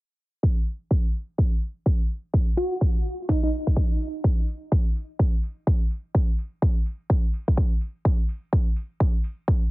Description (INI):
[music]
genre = bass house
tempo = 126 BPM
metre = 4/4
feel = swing 60% on 16ths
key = unclear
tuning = A4 = 439 Hz
[part]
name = electronic kick drum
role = drums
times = 0.4-9.6 s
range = none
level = -21 LUFS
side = equal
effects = small room ambience
[part]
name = electronic hi-hat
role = drums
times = 0.7-9.4 s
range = none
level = -66 LUFS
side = right 3 dB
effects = low-pass filter on hats, small room ambience
[part]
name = bell-like FM electric piano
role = melody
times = 2.6-3.5 s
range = D#4 to F#4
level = -28 LUFS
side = right 1 dB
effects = chorus, ping-pong delay
[sound]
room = digital ambience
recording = heavily compressed radio sound, multiband compression, low-pass filter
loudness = -22 LUFS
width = side -20 dB against mid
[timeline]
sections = 0.4-9.7 A section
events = filter sweep 0.4-9.7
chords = none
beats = | 0.43 0.91 1.38 1.86 | 2.34 2.81 3.29 3.76 | 4.24 4.72 5.19 5.67 | 6.14 6.62 7.10 7.57 | 8.05 8.53 9.00 9.48